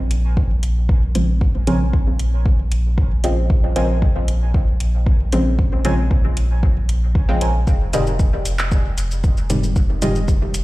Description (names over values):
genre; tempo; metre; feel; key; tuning
dub techno; 115 BPM; 4/4; straight; Bb minor; A4 = 440 Hz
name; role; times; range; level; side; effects
pure sine sub bass; bass; 0.0-10.6 s; F1 to Bb1; -19 LUFS; equal; sidechain pumping
deep house drum kit; drums; 0.1-10.6 s; handclaps, hi-hat, shaker; -28 LUFS; equal; small room ambience, dub echo
electronic kick drum; drums; 0.4-10.4 s; none; -17 LUFS; equal; small room ambience
filtered dub chord stab; stabs; 1.2-10.2 s; Ab2 to C4; -23 LUFS; equal; chorus, phaser, sidechain pumping, dub echo
warbly lo-fi synth keys; riff; 1.7-10.1 s; F4 to Ab5; -31 LUFS; right 3 dB; chorus, phaser, sidechain pumping, dub echo
room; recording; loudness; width
digital ambience; played on a big sound system in a bare room, stone room reverb; -16 LUFS; side -19 dB against mid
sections
0.0-10.6 A section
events
none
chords
0.0 Bbm9; 7.7 Fm9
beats
0.37 0.89 | 1.41 1.94 2.46 2.98 | 3.50 4.02 4.54 5.07 | 5.59 6.11 6.63 7.15 | 7.67 8.20 8.72 9.24 | 9.76 10.28